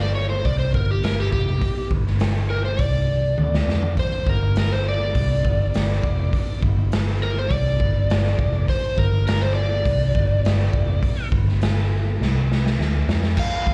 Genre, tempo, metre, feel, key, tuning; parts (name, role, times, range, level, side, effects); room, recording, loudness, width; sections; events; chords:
blues rock power trio and southern rock; 102 BPM; 4/4; straight; G minor; A4 = 440 Hz
overdriven slide guitar; melody; 0.0-13.7 s; G4 to F5; -28 LUFS; equal; slapback echo
vintage muted fingered electric bass; bass; 0.0-13.7 s; F1 to F2; -23 LUFS; equal
raw garage drum kit; drums; 0.5-13.7 s; crash cymbal, hi-hat, kick drum, snare drum, toms; -26 LUFS; equal
little or no reverb; live gig heard through the venue's PA, club reverb; -21 LUFS; mono
0.0-13.4 A section
electric slide guitar solo 0.0-13.7; drum fill 3.4-4.0, 12.2-13.4
0.0 G5